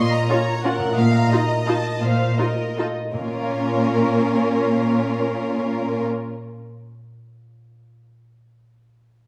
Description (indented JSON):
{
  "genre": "classical, orchestral ballroom waltz",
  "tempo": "155-192 BPM",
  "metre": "3/4",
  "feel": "rubato",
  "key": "Bb minor",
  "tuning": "A4 = 439 Hz",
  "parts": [
    { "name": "rich symphonic violin section", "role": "melody", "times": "0.0-6.0 s", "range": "Bb4 to C6", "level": "-30 LUFS", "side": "equal", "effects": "none" },
    { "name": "clear symphonic violin section", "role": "second line", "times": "0.0-6.0 s", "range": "F4 to F5", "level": "-30 LUFS", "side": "equal", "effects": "none" },
    { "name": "concert harp", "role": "arpeggios", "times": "0.0-7.0 s", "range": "Bb2 to F5", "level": "-33 LUFS", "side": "equal", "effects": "none" },
    { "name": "dark symphonic cello section", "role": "bass", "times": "0.0-6.0 s", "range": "Bb2", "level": "-26 LUFS", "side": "equal", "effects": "none" },
    { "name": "warm symphonic viola section", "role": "accompaniment", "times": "0.3-6.0 s", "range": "Bb3 to F4", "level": "-26 LUFS", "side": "equal", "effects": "none" }
  ],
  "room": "wet recital hall reverb, RT60 1.5 s",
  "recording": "none",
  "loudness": "-21 LUFS",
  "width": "mono",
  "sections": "0.0-3.1 A section; 3.1-5.3 B section",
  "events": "slowing down 0.5-3.1",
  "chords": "0.0 Bbm; 1.0 F7/Bb; 3.1 Bbm"
}